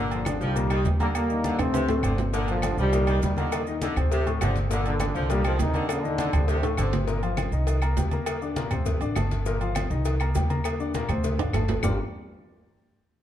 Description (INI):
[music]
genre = latin, salsa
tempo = 202 BPM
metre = 4/4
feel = straight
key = G minor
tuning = A4 = 440 Hz
[part]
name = clear saxophone section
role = second line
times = 0.0-6.9 s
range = C3 to F3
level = -32 LUFS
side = equal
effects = none
[part]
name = warm grand piano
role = accompaniment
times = 0.0-12.0 s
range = A2 to Bb5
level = -31 LUFS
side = left 5 dB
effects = none
[part]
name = upright bass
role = bass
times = 0.0-12.0 s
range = G1 to Eb2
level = -26 LUFS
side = equal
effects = none
[part]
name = warm trombone section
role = melody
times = 0.1-6.7 s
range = Bb2 to C4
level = -28 LUFS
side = equal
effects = none
[part]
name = agogo bells and timbales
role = percussion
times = 0.1-11.9 s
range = none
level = -34 LUFS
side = right 6 dB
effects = none
[part]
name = congas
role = percussion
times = 0.1-11.9 s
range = none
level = -33 LUFS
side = left 1 dB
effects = none
[part]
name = maracas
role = percussion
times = 0.1-11.9 s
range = none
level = -46 LUFS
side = right 9 dB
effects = none
[part]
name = claves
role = percussion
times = 0.3-11.9 s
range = none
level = -40 LUFS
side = left 6 dB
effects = none
[part]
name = cowbell and bongos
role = percussion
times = 2.3-11.9 s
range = none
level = -35 LUFS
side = left 4 dB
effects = none
[sound]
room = moderate large studio reverb, RT60 1.4 s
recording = dark, warm production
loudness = -23 LUFS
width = side -11 dB against mid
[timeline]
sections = 0.0-7.1 A section; 7.1-11.8 B section; 11.8-13.0 C section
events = drum fill 1.6-2.3, 6.6-7.1, 11.2-11.8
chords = 0.0 Gm7; 0.6 Cm7; 1.1 Ebmaj7; 1.7 D5; 2.3 Gm7; 2.9 Cm7; 3.5 Eb5; 4.1 D5; 4.7 Gm7; 5.3 Cm7; 5.9 Eb5; 6.5 D5; 7.1 Gm7; 7.7 Cm7; 8.3 Eb5; 8.9 D5; 9.5 Gm7; 10.1 Cm7; 10.6 Eb5; 11.2 D5; 11.8 Gm7